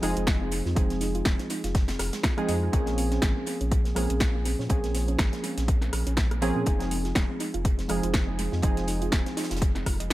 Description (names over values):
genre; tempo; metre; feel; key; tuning
deep house; 122 BPM; 4/4; swing 56% on 16ths; Bb minor; A4 = 440 Hz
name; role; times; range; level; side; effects
soft round pluck; arpeggios; 0.0-10.1 s; Ab3 to Eb5; -36 LUFS; right 2 dB; chorus, sidechain pumping, analog delay
warm analog keys; stabs; 0.0-10.1 s; F3 to Ab4; -30 LUFS; right 1 dB; chorus, sidechain pumping, analog delay
warm sub bass; bass; 0.0-10.1 s; Eb1 to Bb2; -29 LUFS; equal; sidechain pumping
deep house drum kit; drums; 0.0-10.1 s; hi-hat, rim click, snare drum; -32 LUFS; equal; overdrive, dub echo
modern studio drum kit; drums; 0.0-10.1 s; hi-hat, snare drum; -42 LUFS; right 2 dB; sidechain pumping on hats, high-pass filter on hats, high-pass filter on snare, high-pass filter on room, dub echo
electronic kick drum; drums; 0.3-10.0 s; none; -25 LUFS; equal; overdrive
room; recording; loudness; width
digital ambience; echo-heavy mix; -24 LUFS; side -16 dB against mid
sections
0.0-10.1 A section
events
none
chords
0.0 Fm7; 2.7 Bbm9; 6.7 Fm7